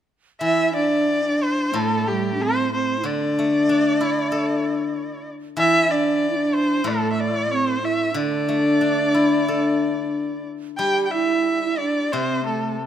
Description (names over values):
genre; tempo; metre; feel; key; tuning
chinese traditional, Chinese chamber ensemble; 92 BPM; 4/4; rubato; unclear; A4 = 440 Hz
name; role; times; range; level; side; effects
clear erhu; melody; 0.4-12.8 s; G4 to G5; -23 LUFS; left 1 dB; none
mellow hollow wooden-headed alto flute; second line; 0.4-12.8 s; G3 to G4; -22 LUFS; right 3 dB; none
steel-string zither; accompaniment; 0.4-12.9 s; A2 to A4; -26 LUFS; left 5 dB; none
room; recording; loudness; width
light reverb; close, detailed microphones; -18 LUFS; side -10 dB against mid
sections
0.4-12.9 A section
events
none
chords
none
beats
| 0.42 1.08 1.75 2.40 | 3.04 3.69 4.33 4.97 | 5.60 6.24 6.87 7.51 | 8.16 8.82 9.47 10.13 | 10.80 11.47 12.14 12.80